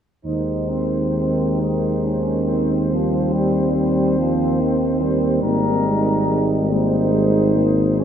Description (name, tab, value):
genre	classical, hymn-like piece for brass band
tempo	46 BPM (dotted quarters)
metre	6/8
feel	uneven beats, rubato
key	Ab major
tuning	A4 = 440 Hz
part	dark French horn section	second line	0.2-8.0 s	C4 to Eb4	-23 LUFS	right 5 dB	none
part	mellow tuba	bass	0.2-8.0 s	Ab1 to Eb2	-21 LUFS	equal	none
part	mellow flugelhorn	melody	0.3-8.0 s	Bb4 to Db5	-26 LUFS	left 5 dB	none
part	clear euphonium	accompaniment	0.3-8.0 s	Eb3 to G3	-26 LUFS	right 2 dB	none
part	dark euphonium	accompaniment	0.3-8.0 s	G3 to Bb3	-24 LUFS	left 1 dB	none
room	moderate church reverb, RT60 3.5 s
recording	minimal, uncompressed stereo recording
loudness	-17 LUFS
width	side -9 dB against mid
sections	0.3-8.0 A section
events	none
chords	0.3 Ab/Eb; 2.9 Eb69; 5.4 Ab